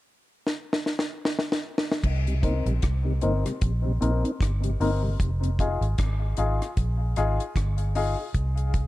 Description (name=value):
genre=dub reggae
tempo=76 BPM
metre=4/4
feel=swing 57% on 16ths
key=C minor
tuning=A4 = 441 Hz
part: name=deep reggae drum kit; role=drums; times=0.5-8.9 s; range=crash cymbal, hi-hat, kick drum, rim click, snare drum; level=-27 LUFS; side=equal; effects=none
part: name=vintage muted fingered electric bass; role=bass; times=2.0-8.9 s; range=F1 to C2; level=-25 LUFS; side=equal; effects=none
part: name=mellow tonewheel organ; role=accompaniment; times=2.3-5.5 s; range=F2 to Eb4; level=-31 LUFS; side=left 1 dB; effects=slow rotary speaker, low-pass filter, tape echo
part: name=clear baby grand piano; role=stabs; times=2.4-8.2 s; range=C4 to Bb4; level=-31 LUFS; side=left 4 dB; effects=low-pass filter, tape echo
room=light reverb, small room ambience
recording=dark, warm production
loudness=-23 LUFS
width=side -17 dB against mid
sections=0.0-2.0 A section; 2.0-8.9 B section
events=drum fill 0.5-2.0; filter sweep 2.0-8.9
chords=0.0 N.C.; 2.0 Cm7; 5.2 Fm7; 8.3 C5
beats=0.46 1.25 | 2.04 2.83 3.62 4.40 | 5.19 5.98 6.77 7.56 | 8.35